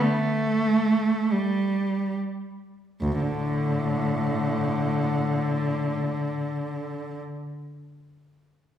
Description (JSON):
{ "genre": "classical, free, expressive piece for unaccompanied cello", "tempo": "free time", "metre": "none", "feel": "none", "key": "unclear", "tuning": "A4 = 440 Hz", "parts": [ { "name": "rich cello", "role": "solo", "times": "0.0-7.2 s", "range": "D2 to A3", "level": "-24 LUFS", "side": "equal", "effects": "none" } ], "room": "wet recital hall reverb, RT60 1.5 s", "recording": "heard from further back in the room", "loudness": "-23 LUFS", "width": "side -10 dB against mid", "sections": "0.0-3.0 A section; 3.0-7.3 B section", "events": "slowing down 0.0-3.0", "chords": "none", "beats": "free time" }